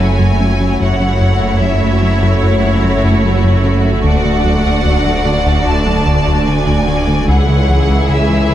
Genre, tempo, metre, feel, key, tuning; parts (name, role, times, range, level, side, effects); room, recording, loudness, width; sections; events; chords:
cinematic, hybrid orchestral and electronic film score; 74 BPM; 4/4; straight; F# minor; A4 = 439 Hz
rich studio violin section; melody; 0.0-8.5 s; C#5 to A5; -21 LUFS; left 1 dB
rich symphonic violin section; second line; 0.0-8.5 s; F#4 to D5; -21 LUFS; left 1 dB
clear symphonic viola section; accompaniment; 0.0-8.5 s; E3 to E4; -21 LUFS; equal
warm analog pad; sustained chords; 0.0-8.5 s; G#3 to E5; -20 LUFS; right 1 dB; chorus
round analog bass; riff; 0.0-8.5 s; C#2 to F#3; -17 LUFS; left 2 dB
rich symphonic cello section; bass; 0.0-8.5 s; C#2 to F#2; -20 LUFS; right 2 dB
rich symphonic double bass section; bass; 0.0-8.5 s; F#1 to D2; -18 LUFS; right 2 dB
warm sub bass; bass; 0.0-8.5 s; D1 to C#2; -20 LUFS; equal
thumb-piano-like synth pluck; arpeggios; 0.2-8.5 s; C#3 to E4; -23 LUFS; right 1 dB; chorus
light reverb; close, detailed microphones; -10 LUFS; side -12 dB against mid
0.0-8.5 A section
0.0 F#m7; 4.0 D; 7.3 C#m